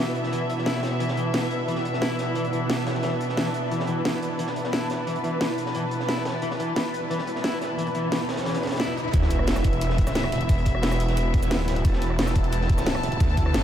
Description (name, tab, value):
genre	dark technical drum and bass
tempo	177 BPM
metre	4/4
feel	straight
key	unclear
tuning	A4 = 440 Hz
part	dark studio string section	sustained chords	0.0-13.6 s	B2 to A5	-28 LUFS	equal	sidechain pumping, low-pass filter
part	electric guitar at the edge of break-up	arpeggios	0.0-8.9 s	E3 to E4	-33 LUFS	left 3 dB	sidechain pumping, ping-pong delay
part	granular cloud pad	texture	0.0-13.6 s	E4 to A6	-31 LUFS	right 1 dB	built-in reverb, sidechain pumping
part	crunchy breakbeat drum kit	drums	0.1-13.6 s	hi-hat, snare drum	-37 LUFS	equal	high-pass filter on hats, studio reverb, high-pass filter on snare, high-pass filter on room
part	drum and bass drum kit	drums	0.7-13.6 s	hi-hat, rim click, shaker, snare drum	-30 LUFS	equal	studio reverb
part	riser and sub drop	sound effects	7.5-10.5 s	none	-32 LUFS	equal	none
part	snarling distorted saw bass	bass	9.1-13.6 s	E1 to D2	-25 LUFS	equal	distortion, overdrive, sidechain pumping
part	electronic kick drum	drums	9.1-13.4 s	none	-22 LUFS	equal	studio reverb
room	moderate huge ambient reverb, RT60 7.6 s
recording	dreamy mix soaked in reverb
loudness	-22 LUFS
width	side -10 dB against mid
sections	0.0-9.1 A section; 9.1-13.6 B section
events	riser 7.5-9.1; drop 9.1-13.6; impact 9.1-10.5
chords	0.0 E5